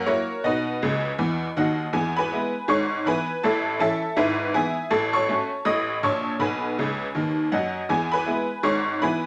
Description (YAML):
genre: jazz, stride piano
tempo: 161 BPM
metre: 4/4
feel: swing 62% on 8ths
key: E major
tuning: A4 = 440 Hz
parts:
  - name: tack piano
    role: solo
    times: 0.0-9.3 s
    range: G#1 to D#6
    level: -24 LUFS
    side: equal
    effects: none
room: wet studio reverb, RT60 0.6 s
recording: none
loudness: -24 LUFS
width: mono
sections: 0.0-1.9 A section; 1.9-9.3 B section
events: honky-tonk piano fill 0.8-1.9, 6.8-7.9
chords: 0.4 B; 1.9 E; 2.7 E/G#; 3.4 A; 4.2 E/G#; 4.9 F#m/A; 6.4 G#madd11/B; 7.1 B; 7.9 E; 8.6 E/G#